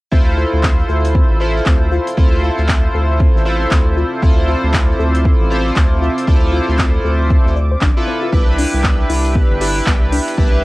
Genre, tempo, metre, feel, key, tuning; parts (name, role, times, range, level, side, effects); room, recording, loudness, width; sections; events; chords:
deep house; 117 BPM; 4/4; swing 60% on 16ths; D dorian; A4 = 440 Hz
dark analog pad; sustained chords; 2.5-10.6 s; C4 to D6; -26 LUFS; right 1 dB; chorus, vintage 12-bit sampler grit, sidechain pumping, cassette tape
soft round pluck; arpeggios; 0.1-10.5 s; B3 to D5; -26 LUFS; left 6 dB; chorus, sidechain pumping, cassette tape, analog delay
chorused polysynth; stabs; 0.1-10.6 s; D4 to C5; -19 LUFS; equal; sidechain pumping, cassette tape, analog delay
round analog bass; bass; 0.1-10.6 s; G1 to D2; -17 LUFS; equal; tube saturation, sidechain pumping
damped 70s drum kit; drums; 0.1-10.5 s; hi-hat, shaker, snare drum; -39 LUFS; left 1 dB
electronic kick drum; drums; 0.1-10.5 s; -14 LUFS; equal; cassette tape
deep house drum kit; drums; 0.6-10.2 s; handclaps, hi-hat; -21 LUFS; equal; cassette tape
little or no reverb; home recording on cassette; -12 LUFS; side -20 dB against mid
0.1-10.6 A section
0.1 Dm7; 8.3 Cmaj9